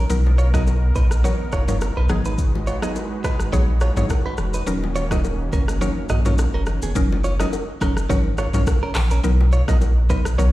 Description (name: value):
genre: afrobeats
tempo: 105 BPM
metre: 4/4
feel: swing 55% on 16ths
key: F# major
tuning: A4 = 443 Hz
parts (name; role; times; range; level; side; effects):
- warm analog pad; sustained chords; 0.0-6.9 s; D#3 to B4; -31 LUFS; right 1 dB; chorus
- direct-recorded clean electric guitar; riff; 0.0-10.5 s; B3 to D#5; -29 LUFS; right 3 dB; ping-pong delay
- warm sub bass; bass; 0.0-10.5 s; D#1 to B1; -19 LUFS; equal; none
- mallet-like synth pluck; accompaniment; 0.1-10.5 s; F#3 to A#4; -27 LUFS; left 1 dB; chorus
- afro-pop drum kit; drums; 0.1-10.5 s; handclaps, hi-hat, kick drum, rim click, shaker, toms; -23 LUFS; equal; none
- congas and bongos; percussion; 0.1-10.5 s; none; -32 LUFS; left 6 dB; none
room: digital ambience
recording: played on a big sound system in a bare room, large studio reverb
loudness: -18 LUFS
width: side -16 dB against mid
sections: 0.0-7.0 A section; 7.0-10.5 B section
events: kick muted 5.8-7.0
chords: 0.1 Bmaj7; 2.1 G#m7; 4.7 D#m7; 7.0 F#6; 9.2 Bmaj7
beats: | 0.10 0.67 1.24 1.81 | 2.38 2.95 3.52 4.10 | 4.67 5.24 5.81 6.38 | 6.95 7.53 8.10 8.67 | 9.24 9.81 10.38